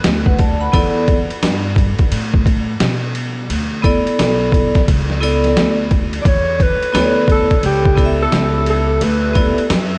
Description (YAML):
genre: hip hop, jazz-hop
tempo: 87 BPM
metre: 4/4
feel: swing 62% on 16ths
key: unclear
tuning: A4 = 439 Hz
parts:
  - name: upright bass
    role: bass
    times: 0.0-10.0 s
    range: B1 to B2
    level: -22 LUFS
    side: equal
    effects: none
  - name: trip hop sampler-style drum kit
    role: drums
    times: 0.0-9.9 s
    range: hi-hat, kick drum, ride cymbal, snare drum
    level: -19 LUFS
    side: equal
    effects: overdrive, vintage 12-bit sampler grit
  - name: vibraphone with hard mallets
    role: accompaniment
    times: 0.3-9.6 s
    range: B3 to B5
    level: -22 LUFS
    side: equal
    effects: none
  - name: breathy alto saxophone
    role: melody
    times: 6.2-9.7 s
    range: G4 to D5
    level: -22 LUFS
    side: equal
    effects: tape echo
room: moderate huge ambient reverb, RT60 9.3 s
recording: dreamy mix soaked in reverb, cassette tape, nothing above 10.7 kHz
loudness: -15 LUFS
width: mono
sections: 0.0-10.0 A section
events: none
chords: 0.0 D6; 0.7 Em7; 3.5 D5; 6.3 E7sus4; 9.0 D6